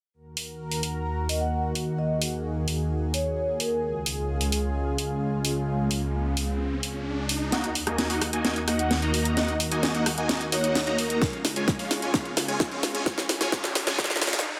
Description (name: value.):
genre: EDM, festival progressive house.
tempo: 130 BPM.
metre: 4/4.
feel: straight.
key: Eb minor.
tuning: A4 = 441 Hz.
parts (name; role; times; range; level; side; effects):
lush unison pad; sustained chords; 0.5-14.4 s; Db2 to Bb4; -31 LUFS; equal; chorus, sidechain pumping.
house drum kit; drums; 0.4-14.5 s; hi-hat, rim click, snare drum; -30 LUFS; equal; none.
vibraphone with soft mallets; melody; 1.3-3.9, 8.7-11.3 s; Bb4 to Gb5; -34 LUFS; equal; none.
riser and noise sweep; sound effects; 5.6-14.6 s; none; -39 LUFS; equal; none.
supersaw chords; riff; 7.5-14.4 s; Ab3 to Bb5; -31 LUFS; equal; phaser, sidechain pumping, low-pass filter, digital delay.
electronic kick drum; drums; 11.2-14.1 s; none; -30 LUFS; equal; none.
room: light reverb, digital ambience.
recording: dense, heavily limited modern master, high-pass filter.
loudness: -27 LUFS.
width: mono.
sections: 0.1-7.5 A section; 7.5-14.6 B section.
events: riser 5.6-7.5; build-up 7.5-14.6; drum fill 7.5-14.4; filter sweep on supersaw synth 7.5-14.6; filter sweep on analog synth pad 7.5-14.6; filter sweep 7.5-14.6; noise sweep 13.1-14.6; break 14.4.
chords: 0.1 Ebm; 3.8 Db; 7.5 Ebm; 11.2 Db.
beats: | 0.14 0.60 1.06 1.52 | 1.99 2.45 2.91 3.37 | 3.83 4.29 4.75 5.21 | 5.68 6.14 6.60 7.06 | 7.52 7.99 8.45 8.91 | 9.37 9.83 10.29 10.75 | 11.21 11.68 12.14 12.60 | 13.06 13.52 13.98 14.45.